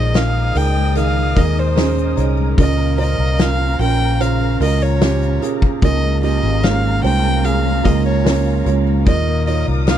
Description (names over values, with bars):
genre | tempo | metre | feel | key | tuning
pop ballad | 74 BPM | 4/4 | straight | unclear | A4 = 439 Hz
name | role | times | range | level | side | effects
dark fiddle | melody | 0.0-10.0 s | C5 to G5 | -22 LUFS | equal | none
felt-muted upright piano | accompaniment | 0.0-10.0 s | Ab2 to Db5 | -21 LUFS | right 13 dB | none
dark studio string section | sustained chords | 0.0-10.0 s | Ab3 to Eb6 | -29 LUFS | left 3 dB | none
fingerpicked steel-string acoustic guitar | arpeggios | 0.0-10.0 s | Db3 to Bb4 | -28 LUFS | left 16 dB | none
vintage muted fingered electric bass | bass | 0.0-10.0 s | Ab1 to Eb2 | -17 LUFS | left 1 dB | none
loose indie drum kit | drums | 0.1-10.0 s | hi-hat, kick drum, snare drum | -17 LUFS | left 1 dB | none
room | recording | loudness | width
little or no reverb | none | -14 LUFS | side -10 dB against mid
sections
0.0-10.0 A section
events
none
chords
0.0 Ebsus4; 2.6 Bbm; 5.8 Db6; 9.1 Ebsus2